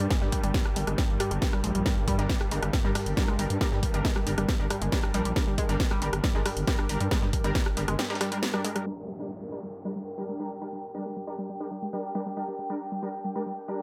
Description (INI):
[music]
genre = driving peak-time techno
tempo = 137 BPM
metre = 4/4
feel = straight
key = G minor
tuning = A4 = 440 Hz
[part]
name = warbly dusty pluck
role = riff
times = 0.0-13.8 s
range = G3 to Ab3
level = -37 LUFS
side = equal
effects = chorus, cassette tape, sidechain pumping, digital delay
[part]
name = growling FM bass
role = bass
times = 0.0-8.0 s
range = G1 to G2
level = -33 LUFS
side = equal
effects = sidechain pumping
[part]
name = swarming drone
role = drone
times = 0.0-8.9 s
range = G2 to G3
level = -40 LUFS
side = equal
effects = built-in reverb, sidechain pumping
[part]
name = techno drum kit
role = drums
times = 0.0-8.8 s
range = hi-hat, rim click, snare drum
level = -35 LUFS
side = equal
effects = none
[part]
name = airy breathy pad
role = texture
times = 0.0-13.8 s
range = D4 to G5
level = -40 LUFS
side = equal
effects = chorus, sidechain pumping
[part]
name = dusty soul sampler-style drum kit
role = drums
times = 0.1-8.8 s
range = hi-hat, snare drum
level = -44 LUFS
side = equal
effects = none
[part]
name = electronic kick drum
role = drums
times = 0.1-7.6 s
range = none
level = -30 LUFS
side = equal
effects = none
[part]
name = rave stab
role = stabs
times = 1.9-13.8 s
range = G3 to Bb4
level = -38 LUFS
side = equal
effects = chorus, built-in reverb, sidechain pumping, delay
[part]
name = downlifter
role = sound effects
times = 8.9-12.4 s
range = none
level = -49 LUFS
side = equal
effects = none
[sound]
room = light reverb, digital ambience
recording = low-pass filter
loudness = -29 LUFS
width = mono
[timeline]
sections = 0.0-8.9 A section; 8.9-13.8 B section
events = drop 0.0-8.9; filter sweep on synth arpeggio sound 8.9-13.8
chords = 0.0 Gm